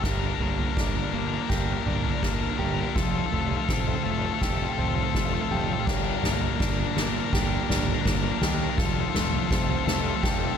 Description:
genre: post-rock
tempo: 82 BPM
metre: 4/4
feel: straight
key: G minor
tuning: A4 = 440 Hz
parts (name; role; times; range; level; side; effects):
- clean electric guitar; arpeggios; 0.0-10.6 s; G2 to G4; -32 LUFS; right 3 dB; digital delay
- distorted electric guitar; riff; 0.0-10.6 s; D4 to Bb4; -29 LUFS; left 11 dB; overdrive
- fuzz picked electric bass; bass; 0.0-10.5 s; F1 to Eb2; -31 LUFS; equal; overdrive
- soft-mallet drum kit; drums; 0.0-10.4 s; crash cymbal, kick drum, snare drum, toms; -27 LUFS; right 1 dB; none
room: light reverb, small room ambience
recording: none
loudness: -23 LUFS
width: side -8 dB against mid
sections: 0.0-10.6 A section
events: build-up 0.0-10.6; drum fill 0.0-10.6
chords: 0.0 Gm; 3.0 Fadd9; 5.9 Gm; 8.8 Fadd9

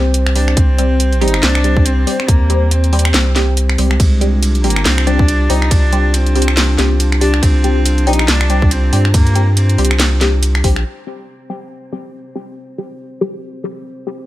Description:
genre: deep dubstep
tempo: 140 BPM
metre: 4/4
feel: swing 58% on 16ths, half-time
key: unclear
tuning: A4 = 442 Hz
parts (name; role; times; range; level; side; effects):
- dark analog pad; sustained chords; 0.0-14.3 s; C4 to C5; -23 LUFS; equal; chorus
- filtered dub chord stab; stabs; 0.0-14.2 s; G3 to G4; -21 LUFS; left 2 dB; phaser, dub echo
- soft dub sub bass; bass; 0.0-10.8 s; Bb1 to G2; -14 LUFS; equal; none
- garage drum kit; drums; 0.1-10.8 s; finger snaps, handclaps, hi-hat, ride cymbal, snare drum; -18 LUFS; equal; low-pass filter on hats, low-pass filter on snare, low-pass filter on cymbals, low-pass filter on room
- warm cello; melody; 0.4-10.2 s; Ab3 to Eb4; -21 LUFS; equal; dub echo
- electronic kick drum; drums; 0.6-10.7 s; none; -12 LUFS; equal; none
room: little or no reverb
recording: none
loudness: -11 LUFS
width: side -15 dB against mid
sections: 0.0-10.9 A section; 10.9-14.3 B section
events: drop 0.0-10.9; filter sweep on synth stab 10.9-14.3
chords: 0.0 C5

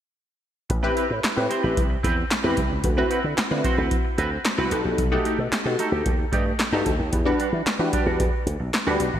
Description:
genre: early-eighties boogie funk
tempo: 112 BPM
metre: 4/4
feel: straight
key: A dorian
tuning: A4 = 442 Hz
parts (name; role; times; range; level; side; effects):
- funky polysynth comp; accompaniment; 0.7-9.0 s; C4 to B4; -25 LUFS; left 1 dB; chorus
- semi-hollow electric guitar; riff; 0.7-9.2 s; G3 to C5; -29 LUFS; right 3 dB; analog chorus
- slap bass with an envelope filter; bass; 0.7-9.2 s; G#1 to E3; -26 LUFS; equal; none
- electro analog drum machine; drums; 0.7-9.1 s; handclaps, hi-hat, kick drum, snare drum; -25 LUFS; equal; gated reverb
room: moderate lush hall reverb, RT60 2.2 s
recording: bright 1980s-style digital production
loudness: -20 LUFS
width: side -10 dB against mid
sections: 0.7-9.2 A section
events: none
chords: 0.7 Am9; 2.8 D13; 4.7 B7b13; 7.1 Em9

